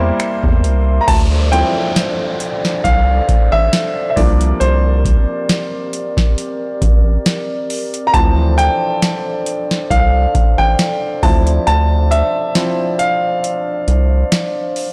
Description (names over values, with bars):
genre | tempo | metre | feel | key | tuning
contemporary R&B | 68 BPM | 4/4 | swing 54% on 16ths | D minor | A4 = 442 Hz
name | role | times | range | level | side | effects
warm baby grand piano | accompaniment | 0.0-14.9 s | E3 to Bb5 | -20 LUFS | equal | none
glass harmonica | sustained chords | 0.0-14.9 s | C4 to C6 | -24 LUFS | equal | none
rubbery square bass | bass | 0.0-14.2 s | A1 to E2 | -16 LUFS | equal | none
booming analog drum machine | drums | 0.2-14.9 s | crash cymbal, finger snaps, hi-hat, kick drum, snare drum | -18 LUFS | equal | soft clipping on snare
downlifter | sound effects | 1.1-8.1 s | none | -31 LUFS | equal | none
room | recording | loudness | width
digital ambience | blown-out, overdriven recording, overdrive | -15 LUFS | mono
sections
0.0-1.1 A section; 1.1-14.9 B section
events
grand piano solo 1.1-14.9; kick muted 11.7-14.9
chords
0.0 C7; 1.1 Dm7; 4.2 C7sus4; 8.1 Dm7; 11.2 Dm9